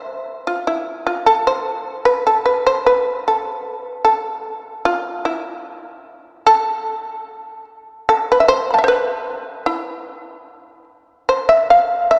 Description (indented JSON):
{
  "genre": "japanese traditional, Japanese chamber music",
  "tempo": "75 BPM",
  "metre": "2/4",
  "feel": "rubato",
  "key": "A hirajoshi",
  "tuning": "A4 = 442 Hz",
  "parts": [
    { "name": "shamisen", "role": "solo", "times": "0.0-12.2 s", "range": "E4 to B5", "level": "-18 LUFS", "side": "equal", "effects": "none" }
  ],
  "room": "wet church reverb, RT60 3.2 s",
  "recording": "none",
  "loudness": "-18 LUFS",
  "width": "mono",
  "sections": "0.0-4.9 A section; 4.9-12.2 B section",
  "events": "none",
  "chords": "none",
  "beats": "| 0.08 0.87 | 1.66 2.45 | 3.25 4.06 | 4.88 5.70 | 6.50 7.30 | 8.10 8.88 | 9.67 10.47 | 11.29 12.12"
}